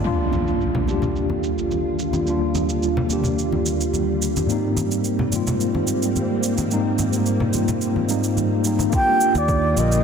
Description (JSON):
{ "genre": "sunset chillout", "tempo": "108 BPM", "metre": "4/4", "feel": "straight", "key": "Eb major", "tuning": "A4 = 435 Hz", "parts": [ { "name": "mellow tine electric piano", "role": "accompaniment", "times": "0.0-10.0 s", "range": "Eb2 to Bb4", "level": "-22 LUFS", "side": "moving between left 3 dB and right 3 dB", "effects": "medium stereo tremolo, auto-pan, ping-pong delay" }, { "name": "soft string machine", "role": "sustained chords", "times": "0.0-10.0 s", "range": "Eb2 to G5", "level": "-26 LUFS", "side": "equal", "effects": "ensemble chorus" }, { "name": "shaker", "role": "drums", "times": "0.0-10.0 s", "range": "none", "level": "-30 LUFS", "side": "right 5 dB", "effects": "overdrive, low-pass filter on perc, low-pass filter on snare" }, { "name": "impact", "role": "sound effects", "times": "0.0-2.3 s", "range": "none", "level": "-26 LUFS", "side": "right 1 dB", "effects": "none" }, { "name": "congas", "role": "percussion", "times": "0.3-8.9 s", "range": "none", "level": "-28 LUFS", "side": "left 1 dB", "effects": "none" }, { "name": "electronic kick drum", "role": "drums", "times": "8.9-9.6 s", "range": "none", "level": "-22 LUFS", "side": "equal", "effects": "overdrive" }, { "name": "mellow baroque flute", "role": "melody", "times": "9.0-10.0 s", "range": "D5 to G5", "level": "-18 LUFS", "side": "right 1 dB", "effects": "ping-pong delay" }, { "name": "modern bright fingered electric bass", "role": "bass", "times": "9.4-10.0 s", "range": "Bb1 to Eb2", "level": "-21 LUFS", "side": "equal", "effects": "none" } ], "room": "wet lush hall reverb, RT60 1.8 s", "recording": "dense, heavily limited modern master", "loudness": "-18 LUFS", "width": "side -6 dB against mid", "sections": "0.0-8.9 A section; 8.9-10.0 B section", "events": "impact 0.0-2.3", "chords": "0.0 Ebmaj9; 4.5 Abmaj9; 8.9 Ebmaj9", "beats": "| 0.04 0.60 1.15 1.71 | 2.26 2.82 3.38 3.93 | 4.49 5.04 5.60 6.15 | 6.71 7.26 7.82 8.38 | 8.93 9.49" }